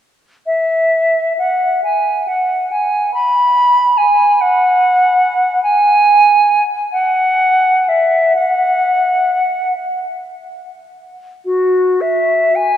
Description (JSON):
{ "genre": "classical, free, expressive piece for unaccompanied flute", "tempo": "30-49 BPM (dotted quarters)", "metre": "6/8", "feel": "rubato", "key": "unclear", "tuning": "A4 = 437 Hz", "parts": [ { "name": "silver concert flute", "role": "solo", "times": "0.5-12.8 s", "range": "F#4 to B5", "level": "-11 LUFS", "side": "equal", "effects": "none" } ], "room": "wet cathedral reverb, RT60 4.8 s", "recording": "none", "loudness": "-11 LUFS", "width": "side -10 dB against mid", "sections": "0.4-12.8 A section", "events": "none", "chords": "none" }